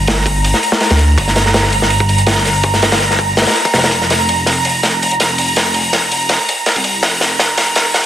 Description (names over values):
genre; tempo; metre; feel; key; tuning
drum and bass, jungle; 164 BPM; 4/4; straight; G minor; A4 = 440 Hz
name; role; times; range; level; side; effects
dark detuned saw bass; bass; 0.0-8.1 s; F1 to D2; -17 LUFS; equal; none
wind-like tuned noise texture; texture; 0.0-8.1 s; Bb5; -18 LUFS; right 2 dB; built-in reverb
crunchy breakbeat drum kit; drums; 0.1-8.1 s; hi-hat, kick drum, snare drum; -13 LUFS; equal; high-pass filter on kick, high-pass filter on hats, high-pass filter on snare, high-pass filter on room
room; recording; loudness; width
moderate lush hall reverb, RT60 2.2 s; dense, heavily limited modern master, vinyl crackle, high-pass filter; -11 LUFS; side -11 dB against mid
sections
0.0-8.1 A section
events
build-up 0.0-8.1; filter sweep 0.0-8.1; drum fill 4.1-8.1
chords
0.0 Gm; 4.1 F5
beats
0.08 0.45 0.81 | 1.18 1.54 1.91 2.27 | 2.64 3.01 3.37 3.74 | 4.10 4.47 4.83 5.20 | 5.57 5.93 6.30 6.67 | 7.03 7.40 7.76